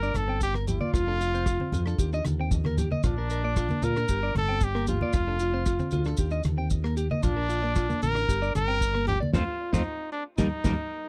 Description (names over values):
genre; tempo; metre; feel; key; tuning
highlife guitar band; 114 BPM; 4/4; straight; Bb major; A4 = 440 Hz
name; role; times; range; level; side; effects
clear trumpet; melody; 0.0-11.1 s; D4 to Bb4; -32 LUFS; equal; none
clean electric guitar; accompaniment; 0.0-10.7 s; G3 to F4; -38 LUFS; equal; spring reverb
electric guitar at the edge of break-up; arpeggios; 0.0-10.7 s; Eb4 to G5; -36 LUFS; equal; tape echo
fingered electric bass; bass; 0.0-10.7 s; F1 to Bb2; -31 LUFS; equal; none
maracas; percussion; 0.0-10.8 s; none; -45 LUFS; equal; none
congas; percussion; 0.1-10.8 s; none; -34 LUFS; equal; none
damped 70s drum kit; drums; 0.2-10.8 s; hi-hat, kick drum, rim click, snare drum; -30 LUFS; equal; none
room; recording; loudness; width
light reverb; dry, close 1970s-style studio recording; -27 LUFS; mono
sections
0.0-11.1 A section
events
band accent 9.3-11.1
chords
0.0 Gm; 0.9 F; 2.0 Eb; 3.0 Bb; 4.1 Gm; 5.1 F; 6.2 Eb; 7.2 Bb; 8.3 Gm; 9.3 F; 10.4 Eb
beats
0.41 | 0.94 1.47 1.99 2.52 | 3.04 3.57 4.09 4.62 | 5.14 5.67 6.19 6.72 | 7.24 7.76 8.29 8.81 | 9.34 9.86 10.38 10.91